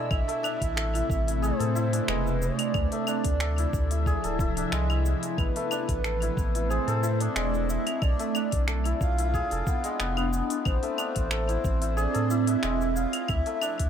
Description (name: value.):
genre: organic downtempo.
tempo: 91 BPM.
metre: 4/4.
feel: swing 54% on 16ths.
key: A harmonic minor.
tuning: A4 = 440 Hz.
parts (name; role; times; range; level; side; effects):
breathy flute-like synth lead; melody; 0.0-13.9 s; B4 to F5; -33 LUFS; equal; analog chorus, cassette tape, tape echo.
ethereal airy pad; sustained chords; 0.0-13.9 s; C3 to E4; -32 LUFS; right 2 dB; ensemble chorus, built-in reverb, phaser, sidechain pumping.
santur; arpeggios; 0.0-13.9 s; G#3 to A4; -32 LUFS; left 2 dB; tape echo.
warm sub bass; bass; 0.1-13.9 s; D1 to A2; -28 LUFS; equal; sidechain pumping.
electronic kick drum; drums; 0.1-13.9 s; none; -29 LUFS; equal; none.
organic electronic drum kit; drums; 0.1-13.9 s; cabasa, claves, finger snaps, hi-hat; -33 LUFS; left 1 dB; tape echo.
room: little or no reverb.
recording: echo-heavy mix.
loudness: -24 LUFS.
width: side -8 dB against mid.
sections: 0.1-13.9 A section.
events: none.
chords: 0.1 Am; 2.7 Dm9; 5.4 Amadd9; 8.0 Bm7b5; 10.7 Am; 13.3 Dm9.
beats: | 0.11 0.77 1.43 2.09 | 2.75 3.40 4.06 4.72 | 5.38 6.04 6.70 7.36 | 8.02 8.68 9.34 10.00 | 10.66 11.32 11.98 12.63 | 13.29.